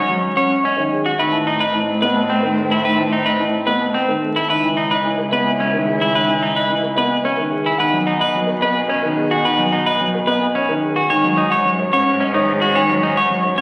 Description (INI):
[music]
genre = classical, minimalist pattern music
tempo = 109 BPM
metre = 3/4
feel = straight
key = C# minor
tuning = A4 = 435 Hz
[part]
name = dark concert grand piano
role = melody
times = 0.0-13.6 s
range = G#4 to C#6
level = -25 LUFS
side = equal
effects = none
[part]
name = warm soprano saxophone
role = second line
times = 0.0-13.6 s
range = C4 to E4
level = -29 LUFS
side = equal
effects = none
[part]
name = clean electric guitar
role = arpeggios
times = 0.0-13.6 s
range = C4 to C#5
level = -21 LUFS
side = equal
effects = none
[part]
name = rich cello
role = bass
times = 0.0-13.6 s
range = C#2 to B2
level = -28 LUFS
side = equal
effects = none
[part]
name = dark grand piano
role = accompaniment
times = 0.1-13.6 s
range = D#3 to C#4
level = -25 LUFS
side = equal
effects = none
[sound]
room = wet scoring stage reverb, RT60 1.6 s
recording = very old 78 rpm record, vinyl crackle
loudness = -18 LUFS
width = mono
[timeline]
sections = 0.0-13.6 A section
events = none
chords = 0.0 G#sus4; 1.2 Amadd9; 4.5 C#m7; 7.8 B; 11.1 G#sus4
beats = 0.09 0.64 | 1.19 1.74 2.29 | 2.84 3.39 3.94 | 4.49 5.04 5.59 | 6.14 6.70 7.25 | 7.80 8.35 8.90 | 9.45 10.00 10.55 | 11.10 11.65 12.20 | 12.75 13.30